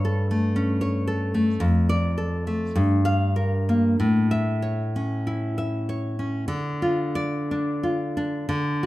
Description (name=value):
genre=romantic piece for solo classical guitar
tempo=46-63 BPM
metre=2/4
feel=rubato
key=D minor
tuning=A4 = 439 Hz
part: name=nylon-string guitar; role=solo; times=0.0-8.9 s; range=F2 to F5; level=-21 LUFS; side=equal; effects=none
room=moderate recital hall reverb, RT60 1.6 s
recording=minimal, uncompressed stereo recording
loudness=-22 LUFS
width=side -16 dB against mid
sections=0.0-6.5 A section; 6.5-8.9 B section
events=none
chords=0.0 A7/G; 1.6 Dm/F; 2.8 Gm7; 4.0 A; 6.5 Dm